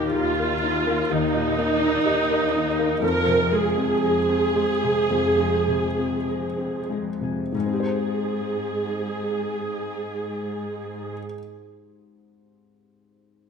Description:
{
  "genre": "cinematic, emotional film score for orchestra",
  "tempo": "47-63 BPM",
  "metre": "4/4",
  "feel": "rubato",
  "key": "Ab major",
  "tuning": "A4 = 440 Hz",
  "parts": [
    { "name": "felt-muted upright piano", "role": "accompaniment", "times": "0.0-13.5 s", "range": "Eb2 to C5", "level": "-26 LUFS", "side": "left 3 dB", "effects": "none" },
    { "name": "warm symphonic viola section", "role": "accompaniment", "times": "0.0-11.2 s", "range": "Eb4 to Bb4", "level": "-24 LUFS", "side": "right 2 dB", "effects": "none" },
    { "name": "concert harp", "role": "arpeggios", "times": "0.0-11.4 s", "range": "Ab2 to C5", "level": "-32 LUFS", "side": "left 4 dB", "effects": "none" },
    { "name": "warm symphonic cello section", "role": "bass", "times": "0.0-11.1 s", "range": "Eb2 to Ab2", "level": "-31 LUFS", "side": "right 3 dB", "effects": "none" }
  ],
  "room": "moderate scoring stage reverb, RT60 1.5 s",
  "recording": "minimal, uncompressed stereo recording",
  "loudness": "-21 LUFS",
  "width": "side -6 dB against mid",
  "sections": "0.0-7.5 A section; 7.5-12.6 B section",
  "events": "slowing down 0.0-7.5",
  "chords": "0.0 Eb; 3.0 Fm; 7.5 Abmaj7"
}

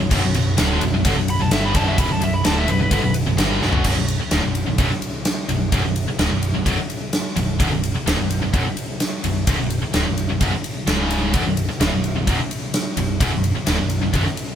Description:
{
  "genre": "hard rock",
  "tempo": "128 BPM",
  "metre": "4/4",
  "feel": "straight",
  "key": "B minor",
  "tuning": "A4 = 440 Hz",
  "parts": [
    { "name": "dark analog pad", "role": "sustained chords", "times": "0.0-3.8 s", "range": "B3 to C#5", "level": "-37 LUFS", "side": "equal", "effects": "none" },
    { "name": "distorted electric guitar", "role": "riff", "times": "0.0-14.3 s", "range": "B1 to G3", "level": "-26 LUFS", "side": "equal", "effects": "overdrive" },
    { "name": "scooped high-gain guitar", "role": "riff", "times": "0.0-14.3 s", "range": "B1 to G3", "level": "-26 LUFS", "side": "right 8 dB", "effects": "distortion" },
    { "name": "tight distorted guitar", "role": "riff", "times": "0.0-14.2 s", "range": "B1 to G3", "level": "-27 LUFS", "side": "left 7 dB", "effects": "distortion" },
    { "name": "picked electric bass", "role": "bass", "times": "0.0-14.2 s", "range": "B0 to G1", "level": "-23 LUFS", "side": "equal", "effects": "none" },
    { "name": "huge arena drum kit", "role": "drums", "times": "0.1-14.5 s", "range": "crash cymbal, kick drum, ride cymbal, snare drum, toms", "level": "-21 LUFS", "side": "equal", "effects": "none" },
    { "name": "biting lead guitar", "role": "melody", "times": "1.3-3.1 s", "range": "B4 to B5", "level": "-24 LUFS", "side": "right 1 dB", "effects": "overdrive" }
  ],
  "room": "moderate stone room reverb, RT60 0.9 s",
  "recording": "band playing live in one room",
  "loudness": "-18 LUFS",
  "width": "side -9 dB against mid",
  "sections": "0.0-3.9 A section; 3.9-14.6 B section",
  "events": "lead electric guitar solo 0.0-3.9; drum fill 3.6",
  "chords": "0.0 Bm; 10.9 C#5; 11.3 Bm"
}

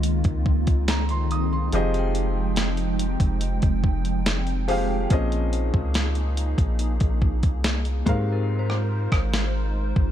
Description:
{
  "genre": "contemporary R&B",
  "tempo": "71 BPM",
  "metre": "4/4",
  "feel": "straight",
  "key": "F minor",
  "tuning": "A4 = 441 Hz",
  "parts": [
    { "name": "felt-muted upright piano", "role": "accompaniment", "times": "0.0-10.1 s", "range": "Ab2 to Eb6", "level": "-29 LUFS", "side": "left 1 dB", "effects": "none" },
    { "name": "hollow soft pad", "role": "sustained chords", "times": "0.0-10.1 s", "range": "Eb3 to G5", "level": "-29 LUFS", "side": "right 1 dB", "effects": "ensemble chorus" },
    { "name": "long sustained 808-style bass", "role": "bass", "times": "0.0-10.1 s", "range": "F1 to Ab2", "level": "-24 LUFS", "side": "equal", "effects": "none" },
    { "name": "clean 12-bit digital drum machine", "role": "drums", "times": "0.0-10.1 s", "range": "hi-hat, kick drum, rim click, snare drum", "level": "-24 LUFS", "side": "equal", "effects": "none" },
    { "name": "synth chime", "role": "texture", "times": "1.7-9.4 s", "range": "G4 to G5", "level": "-38 LUFS", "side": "left 3 dB", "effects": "ensemble chorus, ping-pong delay" }
  ],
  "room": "little or no reverb",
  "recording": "dark, warm production",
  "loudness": "-21 LUFS",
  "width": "side -11 dB against mid",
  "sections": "0.0-10.1 A section",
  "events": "hi-hats muted 8.5-10.1",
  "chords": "0.0 Dbmaj13; 1.7 Fm9; 5.1 Bbm11; 8.1 Ab69"
}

